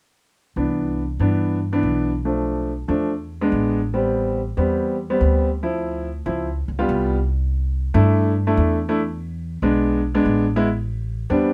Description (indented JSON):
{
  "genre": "Afro-Cuban jazz",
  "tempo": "142 BPM",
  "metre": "4/4",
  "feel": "straight",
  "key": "C major",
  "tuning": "A4 = 441 Hz",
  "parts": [
    { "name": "warm grand piano", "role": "accompaniment", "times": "0.6-11.5 s", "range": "E3 to F4", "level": "-22 LUFS", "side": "equal", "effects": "none" },
    { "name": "upright bass", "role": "bass", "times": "0.6-11.5 s", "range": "A1 to G2", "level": "-25 LUFS", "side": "equal", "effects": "none" }
  ],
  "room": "light reverb",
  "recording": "band playing live in one room",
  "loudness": "-21 LUFS",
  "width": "mono",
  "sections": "0.6-7.3 A section; 7.3-11.5 B section",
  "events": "none",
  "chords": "0.6 Cmaj9; 2.3 Bm7b5; 3.1 E7; 3.9 Am9; 5.6 Dm9; 6.5 Db7#11; 7.3 C6; 9.0 E7; 10.7 Am11",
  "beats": "| 0.56 0.99 1.41 1.83 | 2.25 2.67 3.10 3.52 | 3.94 4.36 4.79 5.21 | 5.63 6.05 6.47 6.89 | 7.31 7.73 8.15 8.57 | 8.99 9.41 9.83 10.25 | 10.67 11.09 11.51"
}